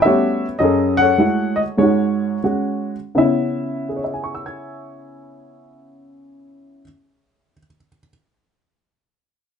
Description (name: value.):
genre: solo jazz.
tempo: 81-112 BPM.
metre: 4/4.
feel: swing 68% on 8ths, rubato.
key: C# minor.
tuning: A4 = 440 Hz.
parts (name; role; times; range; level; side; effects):
dark baby grand piano; solo; 0.0-8.1 s; F#2 to G#6; -16 LUFS; equal; none.
room: moderate studio reverb, RT60 0.6 s.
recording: nothing above 10.8 kHz.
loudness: -16 LUFS.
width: side -7 dB against mid.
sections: 0.0-3.2 A section; 3.2-8.9 B section.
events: slowing down 0.0-3.2.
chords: 0.0 A13; 0.6 F#m9; 1.8 G#7sus4; 3.2 C#m7.